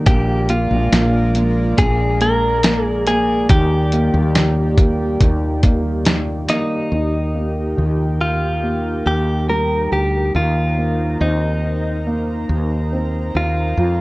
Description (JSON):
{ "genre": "pop ballad", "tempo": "70 BPM", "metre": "4/4", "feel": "straight", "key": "Eb major", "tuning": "A4 = 438 Hz", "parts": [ { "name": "dark baby grand piano", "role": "accompaniment", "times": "0.0-14.0 s", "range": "Eb3 to Eb4", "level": "-22 LUFS", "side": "equal", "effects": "none" }, { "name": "airy breathy pad", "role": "sustained chords", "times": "0.0-14.0 s", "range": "Eb3 to Bb5", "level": "-27 LUFS", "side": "equal", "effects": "chorus" }, { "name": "direct-recorded clean electric guitar", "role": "melody", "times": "0.1-14.0 s", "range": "Eb4 to Bb4", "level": "-21 LUFS", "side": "equal", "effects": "spring reverb" }, { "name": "woody fretless electric bass", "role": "bass", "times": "0.1-14.0 s", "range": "Bb1 to F2", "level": "-19 LUFS", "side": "equal", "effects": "none" }, { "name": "dusty soul sampler-style drum kit", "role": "drums", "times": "0.1-6.7 s", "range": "hi-hat, kick drum, snare drum", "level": "-15 LUFS", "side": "equal", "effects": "vintage 12-bit sampler grit" } ], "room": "light reverb", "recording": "cassette tape", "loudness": "-15 LUFS", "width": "side -20 dB against mid", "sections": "0.0-6.9 A section; 6.9-14.0 B section", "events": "none", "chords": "0.1 Bb7; 3.5 Ebmaj7; 6.9 Eb; 10.3 Bbsus24/Eb" }